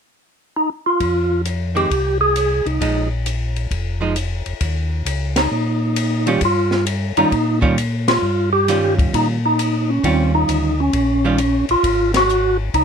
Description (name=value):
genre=soul jazz organ trio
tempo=133 BPM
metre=4/4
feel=swing 67% on 8ths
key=Eb mixolydian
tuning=A4 = 440 Hz
part: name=percussive tonewheel organ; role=melody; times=0.6-12.8 s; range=C4 to Ab4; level=-17 LUFS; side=equal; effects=fast rotary speaker
part: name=mellow tonewheel organ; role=bass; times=1.0-12.8 s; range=F1 to Bb2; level=-21 LUFS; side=left 1 dB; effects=slow rotary speaker
part: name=compact cocktail drum kit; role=drums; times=1.0-12.8 s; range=hi-hat, kick drum, ride cymbal, snare drum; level=-25 LUFS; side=left 2 dB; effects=none
part: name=archtop guitar, miked and amplified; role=accompaniment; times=1.8-11.4 s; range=Eb3 to F4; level=-20 LUFS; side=right 5 dB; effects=none
room=little or no reverb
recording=close, detailed microphones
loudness=-16 LUFS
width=side -6 dB against mid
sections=1.0-4.6 A section; 4.6-12.8 B section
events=band accent 5.3, 8.0, 12.1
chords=0.0 N.C.; 1.0 Fm; 2.8 Bb7sus4; 4.6 Eb9; 11.8 Ab7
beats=0.09 0.54 | 1.00 1.45 1.90 2.35 | 2.80 3.25 3.71 4.16 | 4.61 5.06 5.51 5.96 | 6.42 6.87 7.32 7.77 | 8.22 8.67 9.12 9.58 | 10.03 10.48 10.93 11.38 | 11.83 12.29 12.74